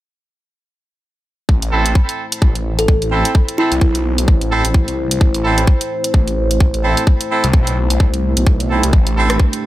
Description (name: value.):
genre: bass house.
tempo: 129 BPM.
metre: 4/4.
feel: swing 58% on 16ths.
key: A minor.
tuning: A4 = 440 Hz.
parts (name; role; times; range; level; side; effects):
dark analog pad; sustained chords; 1.5-9.7 s; A3 to C5; -23 LUFS; equal; wide subtle chorus, sidechain pumping.
phased detuned saw bass; bass; 1.5-9.4 s; A1 to C2; -18 LUFS; equal; phaser, overdrive, sidechain pumping.
electronic kick drum; drums; 1.5-9.5 s; none; -12 LUFS; equal; overdrive, small room ambience.
garage drum kit; drums; 1.6-9.6 s; hi-hat, rim click; -21 LUFS; equal; overdrive, small room ambience.
bright horn section; stabs; 1.7-9.4 s; C4 to A4; -20 LUFS; right 3 dB; sidechain pumping, low-pass filter, digital delay.
kalimba; melody; 2.8-3.8 s; E4 to A4; -22 LUFS; equal; none.
room: little or no reverb.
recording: none.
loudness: -13 LUFS.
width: side -15 dB against mid.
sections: 1.5-9.7 A section.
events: none.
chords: 1.5 Am.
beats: | 1.49 1.95 2.42 2.88 | 3.35 3.81 4.28 4.74 | 5.21 5.67 6.14 6.61 | 7.07 7.54 8.00 8.46 | 8.93 9.39.